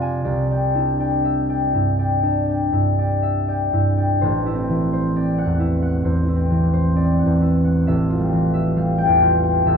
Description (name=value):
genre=classical, solo harp piece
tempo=59-68 BPM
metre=4/4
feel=rubato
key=C major, A minor from 4.2 s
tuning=A4 = 442 Hz
part: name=concert harp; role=solo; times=0.0-9.8 s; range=A1 to Ab5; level=-17 LUFS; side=equal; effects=none
room=moderate recital hall reverb, RT60 1.7 s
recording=dark, warm production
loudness=-17 LUFS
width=side -6 dB against mid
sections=0.0-4.2 A section; 4.2-9.8 B section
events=none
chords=0.3 Cadd9; 4.2 Am6; 7.9 Fmaj9/A